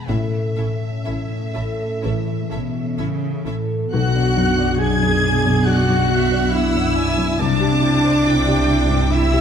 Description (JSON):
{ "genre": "cinematic, emotional film score for orchestra", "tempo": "61-72 BPM", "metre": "4/4", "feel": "rubato", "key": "unclear", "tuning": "A4 = 444 Hz", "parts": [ { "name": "rich studio violin section", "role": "melody", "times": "0.0-9.4 s", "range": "E5 to G#6", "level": "-27 LUFS", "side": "left 2 dB", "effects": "none" }, { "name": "felt-muted upright piano", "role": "accompaniment", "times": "0.0-9.4 s", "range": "B1 to D5", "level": "-24 LUFS", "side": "left 2 dB", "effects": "none" }, { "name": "concert harp", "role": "arpeggios", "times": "0.0-9.4 s", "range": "E2 to D6", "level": "-25 LUFS", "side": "left 6 dB", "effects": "none" }, { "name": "warm studio violin section", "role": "second line", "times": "0.1-9.4 s", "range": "A4 to A5", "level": "-30 LUFS", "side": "left 1 dB", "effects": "none" }, { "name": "rich studio viola section", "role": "accompaniment", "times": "0.1-9.4 s", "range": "C#4 to G#4", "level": "-27 LUFS", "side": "right 2 dB", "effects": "none" }, { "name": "mellow French horn section", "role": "sustained chords", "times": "0.1-9.4 s", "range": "C#4 to A4", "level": "-25 LUFS", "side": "left 2 dB", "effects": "none" }, { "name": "warm studio cello section", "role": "bass", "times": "0.1-9.4 s", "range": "A2 to C#3", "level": "-25 LUFS", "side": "right 4 dB", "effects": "none" }, { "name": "warm studio double bass section", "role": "bass", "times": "0.1-9.4 s", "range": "A1 to C2", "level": "-24 LUFS", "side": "right 3 dB", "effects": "none" }, { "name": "clear oboe", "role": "second line", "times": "3.9-9.4 s", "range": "D5 to G#5", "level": "-27 LUFS", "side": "right 2 dB", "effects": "none" }, { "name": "mellow small flute group", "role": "second line", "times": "3.9-9.4 s", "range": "D5 to G#5", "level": "-29 LUFS", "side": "left 4 dB", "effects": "none" } ], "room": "wet scoring stage reverb, RT60 1.7 s", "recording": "none", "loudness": "-16 LUFS", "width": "side -8 dB against mid", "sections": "0.0-3.9 A section; 3.9-9.4 B section", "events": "none", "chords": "0.1 A; 3.9 Bm; 7.4 Cadd9" }